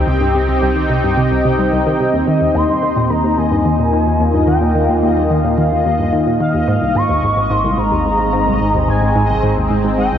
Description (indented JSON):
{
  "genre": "ambient, sequencer-driven space music",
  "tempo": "109 BPM",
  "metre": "4/4",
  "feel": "straight",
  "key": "unclear",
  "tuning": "A4 = 440 Hz",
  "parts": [
    { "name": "sweeping resonant pad", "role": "sustained chords", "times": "0.0-10.2 s", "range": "Ab3 to G5", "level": "-17 LUFS", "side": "equal", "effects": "chorus" },
    { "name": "analog pluck", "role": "riff", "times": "0.0-10.2 s", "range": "C2 to G3", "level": "-18 LUFS", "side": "equal", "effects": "chorus, cassette tape, ping-pong delay" },
    { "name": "round analog bass", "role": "bass", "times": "0.0-10.2 s", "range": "Ab1 to Eb2", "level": "-21 LUFS", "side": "equal", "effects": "none" },
    { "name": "bubbling stepped-filter texture", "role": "texture", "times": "0.0-10.2 s", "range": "Eb5 to G5", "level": "-28 LUFS", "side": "left 1 dB", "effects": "chorus, built-in reverb" },
    { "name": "expressive synth lead", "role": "melody", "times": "2.3-10.2 s", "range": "Eb5 to Db6", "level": "-19 LUFS", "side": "equal", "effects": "analog chorus, cassette tape, ping-pong delay" }
  ],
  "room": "wet huge ambient reverb, RT60 8.1 s",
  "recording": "worn, warbling old tape, cassette tape, warbly pitch drift",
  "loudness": "-13 LUFS",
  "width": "side -9 dB against mid",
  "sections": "0.0-10.2 A section",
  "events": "none",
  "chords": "0.0 Cm; 2.3 Ebsus2; 6.7 Ab"
}